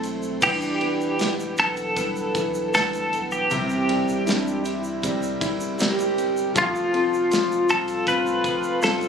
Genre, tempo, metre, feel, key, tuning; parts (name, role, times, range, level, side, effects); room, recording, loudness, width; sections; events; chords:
pop ballad; 79 BPM; 4/4; straight; A4 = 441 Hz
dark French horn section; second line; 0.0-9.1 s; B3 to G4; -27 LUFS; right 2 dB; ping-pong delay
warm concert grand piano; accompaniment; 0.0-9.1 s; C3 to E4; -28 LUFS; left 2 dB
fingerpicked steel-string acoustic guitar; arpeggios; 0.0-9.1 s; C3 to B4; -32 LUFS; left 2 dB; ping-pong delay
sub bass with octave; bass; 0.0-9.1 s; E1 to D2; -40 LUFS; equal
modern studio drum kit; drums; 0.0-9.1 s; crash cymbal, kick drum, ride cymbal, snare drum; -30 LUFS; right 1 dB
tube shaker; percussion; 0.0-9.1 s; -40 LUFS; right 2 dB
twelve-string electric guitar; melody; 0.4-9.1 s; F4 to B4; -23 LUFS; left 1 dB; tremolo
light reverb; recorded on a phone in the room, club reverb; -20 LUFS; side -7 dB against mid
0.4-9.1 A section
0.4 Em7; 3.5 C7; 6.6 F